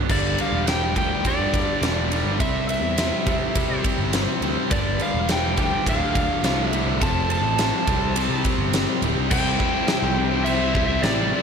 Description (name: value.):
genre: classic rock.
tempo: 104 BPM.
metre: 4/4.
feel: straight.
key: unclear.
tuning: A4 = 439 Hz.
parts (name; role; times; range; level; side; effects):
cranked stack guitar; riff; 0.0-11.4 s; D2 to C5; -27 LUFS; left 11 dB; overdrive, slapback echo.
tight distorted guitar; riff; 0.0-11.4 s; D2 to C5; -28 LUFS; right 11 dB; distortion, slapback echo.
picked electric bass; bass; 0.0-11.3 s; D1 to C3; -26 LUFS; equal; none.
overdriven slide guitar; melody; 0.1-11.4 s; D5 to A5; -26 LUFS; right 1 dB; slapback echo.
huge arena drum kit; drums; 0.1-11.2 s; crash cymbal, kick drum, ride cymbal, snare drum; -24 LUFS; equal; none.
overdriven electric guitar; riff; 9.3-11.4 s; C3 to C4; -29 LUFS; left 2 dB; none.
room: moderate lush hall reverb, RT60 2.3 s.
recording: big arena sound.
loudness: -19 LUFS.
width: side -6 dB against mid.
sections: 0.1-9.3 A section; 9.3-11.4 B section.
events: none.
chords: 0.1 G5; 2.4 C; 4.7 G5; 5.9 Dm; 7.0 F; 7.9 C5; 9.3 C.